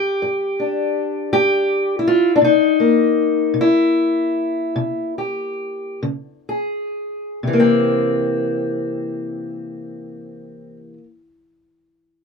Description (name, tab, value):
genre	acoustic country blues, solo or duo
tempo	41-55 BPM (dotted quarters)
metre	12/8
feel	straight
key	C mixolydian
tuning	A4 = 442 Hz
part	fingerpicked steel-string acoustic guitar	solo	0.0-11.0 s	G2 to Ab4	-17 LUFS	left 2 dB	none
room	moderate booth ambience, RT60 0.3 s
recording	none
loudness	-16 LUFS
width	side -5 dB against mid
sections	0.0-7.5 A section; 7.5-12.2 B section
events	slowing down 0.9-7.5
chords	0.0 G5; 2.4 C7; 6.1 Db5; 7.5 C7